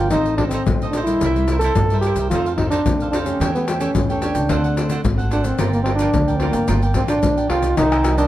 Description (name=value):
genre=samba and choro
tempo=110 BPM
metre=4/4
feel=straight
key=G minor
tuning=A4 = 440 Hz
part: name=warm trombone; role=melody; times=0.0-8.3 s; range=Bb3 to A4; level=-20 LUFS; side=right 1 dB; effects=plate reverb
part: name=cavaquinho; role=accompaniment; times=0.0-8.3 s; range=D4 to G5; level=-28 LUFS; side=right 4 dB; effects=none
part: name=nylon-string guitar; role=accompaniment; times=0.0-8.3 s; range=F2 to G4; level=-29 LUFS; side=left 3 dB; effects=none
part: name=upright bass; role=bass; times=0.0-8.3 s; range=G1 to G2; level=-22 LUFS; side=right 1 dB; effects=none
part: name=tube shaker, surdo, pandeiro and tamborim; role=percussion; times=0.1-8.3 s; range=none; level=-23 LUFS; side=left 3 dB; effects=none
part: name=breathy tenor saxophone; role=second line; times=7.8-8.3 s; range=Eb3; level=-26 LUFS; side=right 3 dB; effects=none
room=moderate studio reverb, RT60 0.7 s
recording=dark, warm production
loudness=-16 LUFS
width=side -14 dB against mid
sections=0.0-7.8 A section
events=none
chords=0.1 Adim; 1.2 C7; 2.3 F7; 3.4 A7/E; 4.5 D7; 5.6 Gm7